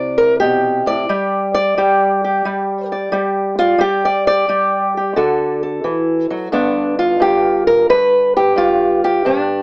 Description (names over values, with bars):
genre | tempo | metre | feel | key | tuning
acoustic country blues, solo or duo | 88 BPM | 4/4 | swing 68% on 8ths | G mixolydian | A4 = 440 Hz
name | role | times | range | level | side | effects
fingerpicked old ladder-braced acoustic guitar | solo | 0.0-9.6 s | G2 to D5 | -13 LUFS | equal | none
room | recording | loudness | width
light reverb | small speaker sound | -13 LUFS | side -27 dB against mid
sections
0.0-6.5 A section; 6.5-9.6 B section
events
steel-string acoustic guitar solo 0.0-6.5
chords
0.0 C; 1.1 G5; 5.2 D; 6.5 G